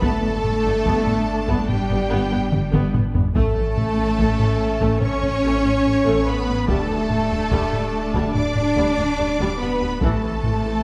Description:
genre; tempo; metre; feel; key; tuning
cinematic, hybrid orchestral and electronic film score; 72 BPM; 4/4; straight; unclear; A4 = 440 Hz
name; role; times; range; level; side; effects
rich symphonic violin section; melody; 0.0-10.8 s; G5 to D6; -33 LUFS; equal; none
warm symphonic violin section; second line; 0.0-10.8 s; G4 to D5; -31 LUFS; equal; none
dark symphonic viola section; accompaniment; 0.0-10.8 s; C3 to D4; -29 LUFS; equal; none
dark French horn section; sustained chords; 0.0-10.8 s; G3 to D4; -28 LUFS; equal; none
punchy sub bass; bass; 0.0-10.8 s; D1 to A1; -32 LUFS; equal; none
rich studio cello section; bass; 0.0-10.8 s; G3 to D4; -28 LUFS; equal; none
rich symphonic double bass section; bass; 0.0-10.7 s; G1 to D2; -28 LUFS; equal; none
solo taiko drums; drums; 0.0-10.8 s; none; -26 LUFS; equal; none
room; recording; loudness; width
wet scoring stage reverb, RT60 1.7 s; dark, warm production; -20 LUFS; mono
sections
0.0-10.8 A section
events
drum fill 2.5-3.4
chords
0.0 G; 3.4 A; 6.7 Dsus4; 10.0 Am

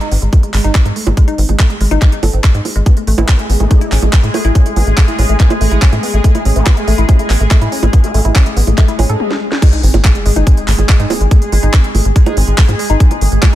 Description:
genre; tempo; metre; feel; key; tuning
psychedelic trance; 142 BPM; 4/4; straight; unclear; A4 = 437 Hz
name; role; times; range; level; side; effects
woody wave-folded pluck; riff; 0.0-13.5 s; G#3 to A4; -20 LUFS; moving between left 5 dB and right 4 dB; chorus, auto-pan, sidechain pumping, ping-pong delay
garage drum kit; drums; 0.0-13.5 s; bongos, crash cymbal, handclaps, hi-hat, snare drum, toms; -19 LUFS; right 3 dB; none
tight sequencer bass; bass; 0.1-13.4 s; G#1 to A2; -12 LUFS; equal; none
electronic kick drum; drums; 0.3-13.5 s; none; -9 LUFS; equal; none
bubbling stepped-filter texture; sustained chords; 3.1-13.6 s; G#3 to G#4; -21 LUFS; equal; chorus, built-in reverb, sidechain pumping
vowel-sweep wobble bass; second line; 3.2-3.9, 6.6-8.2 s; B3 to E4; -29 LUFS; left 2 dB; ensemble chorus, sidechain pumping, high-pass filter, ping-pong delay
swell and sub drop; sound effects; 8.9-11.3 s; none; -21 LUFS; left 1 dB; none
room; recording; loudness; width
little or no reverb; faint mains hum; -9 LUFS; side -14 dB against mid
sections
0.0-9.6 A section; 9.6-13.6 B section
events
swell 8.9-9.6; drum fill 9.2-9.6; stop 9.2-9.6; band accent 9.5; drop 9.6-13.6; impact 9.6-11.3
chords
0.0 G#5; 2.9 A5; 9.6 G#5

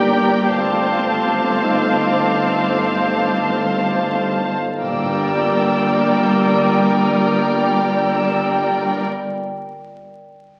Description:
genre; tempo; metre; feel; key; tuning
cinematic, suspense film score; 57 BPM; 4/4; straight; G minor; A4 = 440 Hz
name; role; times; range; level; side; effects
rich studio violin section; melody; 0.0-9.0 s; G5 to A5; -28 LUFS; equal; none
rich chamber violin section; second line; 0.0-9.0 s; Bb4 to F5; -25 LUFS; equal; none
rich chamber viola section; accompaniment; 0.0-9.0 s; G3 to G4; -26 LUFS; equal; none
dark French horn section; sustained chords; 0.0-9.0 s; A3 to F4; -26 LUFS; equal; none
glass harmonica; sustained chords; 0.0-9.0 s; G4 to G5; -26 LUFS; equal; none
clear chamber double bass section; bass; 0.0-9.0 s; G1; -30 LUFS; equal; none
rich studio cello section; bass; 0.0-9.0 s; G2; -27 LUFS; equal; none
deep rumbling drone; drone; 0.0-9.0 s; G1; -43 LUFS; equal; none
rich studio violin section; texture; 0.0-8.4 s; D6 to G6; -29 LUFS; equal; none
vibraphone with soft mallets; texture; 1.6-4.8 s; Eb4 to Eb5; -30 LUFS; equal; none
sub drop; sound effects; 4.8-9.1 s; none; -41 LUFS; equal; none
room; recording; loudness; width
wet scoring stage reverb, RT60 1.6 s; very old 78 rpm record, vinyl crackle; -18 LUFS; mono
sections
0.0-4.8 A section; 4.8-8.9 B section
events
impact 4.8-8.9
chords
0.0 Gm; 0.6 F/G; 4.8 Gm

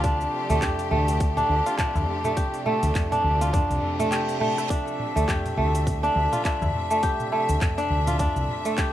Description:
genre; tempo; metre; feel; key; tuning
organic downtempo; 103 BPM; 4/4; swing 58% on 16ths; D minor; A4 = 440 Hz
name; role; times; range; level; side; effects
clear studio string section; sustained chords; 0.0-8.9 s; C3 to E5; -32 LUFS; equal; sidechain pumping, plate reverb
kora; arpeggios; 0.0-8.9 s; A3 to G4; -24 LUFS; equal; digital delay, plate reverb
woody fretless electric bass; bass; 0.0-8.4 s; C2 to D2; -25 LUFS; equal; sidechain pumping
afro-pop drum kit; drums; 0.0-8.9 s; cabasa, handclaps, hi-hat, rim click, toms; -33 LUFS; equal; none
electronic kick drum; drums; 0.0-8.9 s; none; -26 LUFS; equal; none
tabla; percussion; 0.6-8.5 s; none; -34 LUFS; left 1 dB; none
reverse cymbal; sound effects; 3.8-4.7 s; none; -36 LUFS; right 6 dB; none
room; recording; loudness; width
light reverb; rough home demo mix; -21 LUFS; side -12 dB against mid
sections
0.0-8.9 A section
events
reverse cymbal 3.8-4.7; drum fill 4.4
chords
0.0 Dm9

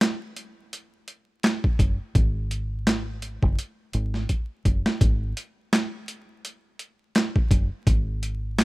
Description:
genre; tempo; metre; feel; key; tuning
hip hop, boom-bap hip-hop; 84 BPM; 4/4; swing 56% on 16ths; unclear; A4 = 441 Hz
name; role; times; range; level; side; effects
boom bap sampler-style drum kit; drums; 0.0-8.6 s; handclaps, hi-hat, kick drum, snare drum; -21 LUFS; equal; overdrive
deep dub fingered electric bass; bass; 1.8-8.6 s; F#1 to G#1; -27 LUFS; equal; none
room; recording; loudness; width
little or no reverb; rough home demo mix, vinyl crackle; -22 LUFS; side -21 dB against mid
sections
0.0-5.0 A section; 5.0-8.6 B section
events
drum fill 4.3-5.0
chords
none

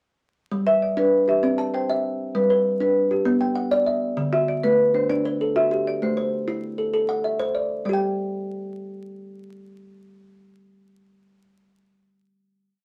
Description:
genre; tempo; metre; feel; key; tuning
southern african traditional, mbira-style interlocking cycle; 131 BPM (dotted quarters); 12/8; straight; G major; A4 = 438 Hz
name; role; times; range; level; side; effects
kalimba; arpeggios; 0.5-12.0 s; D3 to A5; -26 LUFS; equal; none
marimba with medium hard mallets; melody; 0.7-11.9 s; B4 to E5; -24 LUFS; equal; none
room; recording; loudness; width
moderate studio reverb, RT60 0.5 s; vinyl crackle; -22 LUFS; mono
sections
0.5-7.9 A section; 7.9-11.5 final chord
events
none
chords
0.5 G; 1.4 C; 2.3 G; 3.3 Bm; 4.2 D; 6.0 Am; 7.9 G5

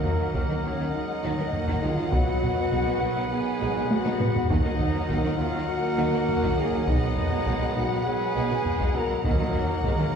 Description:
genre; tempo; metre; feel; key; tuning
cinematic, epic orchestral film score; 101 BPM; 4/4; straight; Eb minor; A4 = 436 Hz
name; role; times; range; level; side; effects
warm symphonic violin section; melody; 0.0-10.2 s; Gb5; -35 LUFS; left 3 dB; none
bright small flute group; second line; 0.0-10.1 s; Bb4 to Bb5; -36 LUFS; equal; none
rich symphonic violin section; second line; 0.0-10.2 s; Eb4 to Eb5; -39 LUFS; left 2 dB; none
rich studio viola section; accompaniment; 0.0-10.2 s; Gb3 to B3; -34 LUFS; right 2 dB; none
dark trombone section; sustained chords; 0.0-10.2 s; Eb3 to Gb3; -38 LUFS; right 2 dB; none
pipe organ, principal; sustained chords; 0.0-10.2 s; Eb4 to Eb5; -36 LUFS; equal; none
warm French horn section; sustained chords; 0.0-10.1 s; Bb3 to Bb4; -30 LUFS; left 2 dB; none
warm trumpet; stabs; 0.0-10.2 s; Bb4 to B4; -36 LUFS; right 2 dB; none
rich symphonic cello section; bass; 0.0-10.1 s; B2 to Eb3; -32 LUFS; right 1 dB; none
warm chamber double bass section; bass; 0.0-9.9 s; B1 to Eb2; -33 LUFS; right 2 dB; none
taiko ensemble; drums; 0.0-10.2 s; none; -28 LUFS; equal; none
timpani; percussion; 0.0-0.6, 4.5-5.4, 9.2-10.1 s; Eb3; -37 LUFS; right 1 dB; none
room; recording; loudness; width
wet scoring stage reverb, RT60 1.5 s; heard from further back in the room; -23 LUFS; side -7 dB against mid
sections
0.0-10.2 A section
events
drum fill 3.9-4.5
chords
0.0 Ebm; 2.1 B; 4.5 Ebm; 6.9 B; 9.3 Ebm

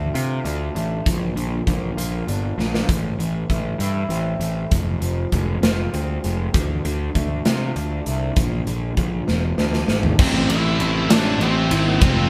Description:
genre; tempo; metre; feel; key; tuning
quiet-loud alternative rock; 66 BPM (dotted quarters); 6/8; straight; A phrygian; A4 = 442 Hz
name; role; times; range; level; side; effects
electric guitar at the edge of break-up; arpeggios; 0.0-10.2 s; E2 to F4; -32 LUFS; equal; warbly pitch drift
fuzz picked electric bass; bass; 0.0-12.3 s; E1 to C3; -25 LUFS; equal; overdrive
big rock drum kit; drums; 0.2-12.2 s; crash cymbal, hi-hat, kick drum, ride cymbal, snare drum, toms; -24 LUFS; equal; none
octave-fuzz lead guitar; melody; 10.2-12.3 s; C4 to E5; -25 LUFS; equal; distortion
overdriven electric guitar; riff; 10.2-12.3 s; A2 to F4; -24 LUFS; equal; none
room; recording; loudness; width
light reverb; band playing live in one room; -21 LUFS; mono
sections
0.0-10.2 A section; 10.2-12.3 B section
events
drum fill 2.6-2.9, 9.3-10.2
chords
0.0 Dm; 1.1 Bb; 2.9 Am; 4.7 Fm; 6.5 Dm; 8.4 Bb; 9.3 E7; 10.2 Am

